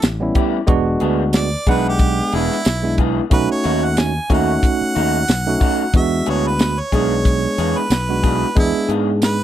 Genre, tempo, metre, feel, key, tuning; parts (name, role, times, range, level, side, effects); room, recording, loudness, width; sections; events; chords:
straight-eighth soul blues; 91 BPM; 4/4; swing 55% on 16ths; E mixolydian; A4 = 440 Hz
bright harmonica; second line; 0.0-9.4 s; E4 to G#5; -22 LUFS; right 2 dB
fingered electric bass; bass; 0.0-9.4 s; E1 to G#2; -21 LUFS; left 1 dB
tight funk drum kit; drums; 0.0-9.4 s; hi-hat, kick drum, snare drum, tambourine; -16 LUFS; left 1 dB
bright tine electric piano; accompaniment; 0.2-9.4 s; G3 to F#5; -19 LUFS; right 4 dB; medium stereo tremolo
electric guitar through a small old amp; stabs; 0.4-9.1 s; E3 to G#4; -26 LUFS; left 9 dB; spring reverb
little or no reverb; dry, close 1970s-style studio recording; -15 LUFS; side -11 dB against mid
0.0-5.9 A section; 5.9-9.4 A section
harmonica solo 0.0-9.4
0.0 A7; 0.7 E7; 3.3 B7; 5.9 E7